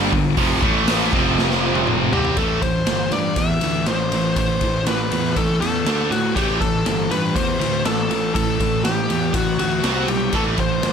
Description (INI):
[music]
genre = hard rock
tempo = 120 BPM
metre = 4/4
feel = straight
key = A dorian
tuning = A4 = 441 Hz
[part]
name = cranked stack guitar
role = riff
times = 0.0-10.9 s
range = F2 to D4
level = -24 LUFS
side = right 13 dB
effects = overdrive
[part]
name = scooped high-gain guitar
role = riff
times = 0.0-10.9 s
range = F2 to D4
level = -25 LUFS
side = left 14 dB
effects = distortion
[part]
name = tight distorted guitar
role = riff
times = 0.0-2.4 s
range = F2 to C4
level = -24 LUFS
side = right 1 dB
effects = distortion
[part]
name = fuzz picked electric bass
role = bass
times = 0.0-10.9 s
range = F1 to A2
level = -25 LUFS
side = equal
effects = overdrive
[part]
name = raw garage drum kit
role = drums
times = 0.1-10.9 s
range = hi-hat, kick drum, ride cymbal, snare drum, toms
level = -23 LUFS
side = left 1 dB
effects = none
[part]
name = bluesy overdriven lead guitar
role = melody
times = 2.1-10.9 s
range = F#4 to E5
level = -23 LUFS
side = left 2 dB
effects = distortion, tape echo
[sound]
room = light reverb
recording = none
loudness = -17 LUFS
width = side -7 dB against mid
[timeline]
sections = 0.0-2.4 A section; 2.4-10.9 B section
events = drum fill 1.4-2.4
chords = 0.0 G5; 0.6 A5; 1.1 F5; 2.1 C5; 2.4 Am; 5.9 D5; 6.4 A5; 9.8 C5; 10.3 Am